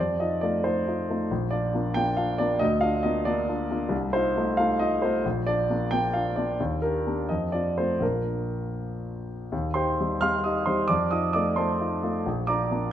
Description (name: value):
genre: classical, romantic character piece for solo piano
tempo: 78-93 BPM (dotted quarters)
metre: 6/8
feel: rubato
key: Bb major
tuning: A4 = 442 Hz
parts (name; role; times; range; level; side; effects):
- warm grand piano; solo; 0.0-12.9 s; Bb1 to F6; -24 LUFS; equal; none
room: wet recital hall reverb, RT60 1.4 s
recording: none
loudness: -23 LUFS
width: side -11 dB against mid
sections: 0.0-9.5 A section; 9.5-12.9 A section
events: none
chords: 0.0 F7; 1.3 Bb; 2.6 Bb/D; 3.9 F7/C; 5.2 Bb; 6.6 Ebmaj7; 7.3 F; 8.0 Bb; 9.5 Cm/Eb; 10.9 F7; 12.3 Bb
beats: 0.65 | 1.31 1.97 | 2.62 3.27 | 3.93 4.58 | 5.25 5.92 | 6.59 7.29 | 8.03 8.78 | 9.52 10.22 | 10.90 11.58 | 12.26